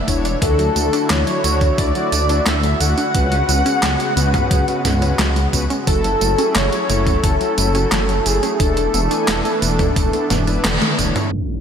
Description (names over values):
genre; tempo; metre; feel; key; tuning
synthwave; 88 BPM; 4/4; straight; unclear; A4 = 440 Hz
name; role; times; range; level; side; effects
wide unison lead; melody; 0.0-10.6 s; G#4 to F#5; -22 LUFS; equal; wide subtle chorus, ping-pong delay, slapback echo
airy dreamy lead; second line; 0.0-10.6 s; G#4 to F#5; -26 LUFS; equal; chorus, cassette tape, ping-pong delay, slapback echo
warm analog pad; sustained chords; 0.0-11.6 s; D2 to A4; -26 LUFS; equal; chorus, sidechain pumping
wide unison pluck; arpeggios; 0.1-11.3 s; E3 to D4; -27 LUFS; right 2 dB; ping-pong delay
mellow synth brass; stabs; 0.1-11.6 s; C#4 to G#5; -25 LUFS; left 4 dB; chorus, cassette tape, ping-pong delay, slapback echo
dark detuned saw bass; bass; 0.1-11.1 s; E1 to D2; -20 LUFS; equal; none
clean 12-bit digital drum machine; drums; 0.1-11.6 s; handclaps, hi-hat, snare drum, tambourine, toms; -22 LUFS; right 1 dB; low-pass filter on hats, low-pass filter on perc, low-pass filter on snare, low-pass filter on toms, low-pass filter on room
electronic kick drum; drums; 0.1-11.1 s; none; -20 LUFS; equal; none
impact; sound effects; 11.3-11.6 s; none; -23 LUFS; equal; none
room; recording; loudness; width
moderate lush hall reverb, RT60 2.8 s; big arena sound, low-pass filter; -15 LUFS; side -8 dB against mid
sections
0.0-11.3 A section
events
drum fill 10.6-11.3; band accent 10.6-11.0; impact 11.3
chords
0.4 Dadd9; 3.1 C#7sus4; 5.9 F#m7; 8.6 E7sus4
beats
| 0.42 1.10 1.78 2.46 | 3.15 3.83 4.51 5.19 | 5.87 6.55 7.24 7.92 | 8.60 9.28 9.96 10.64 | 11.33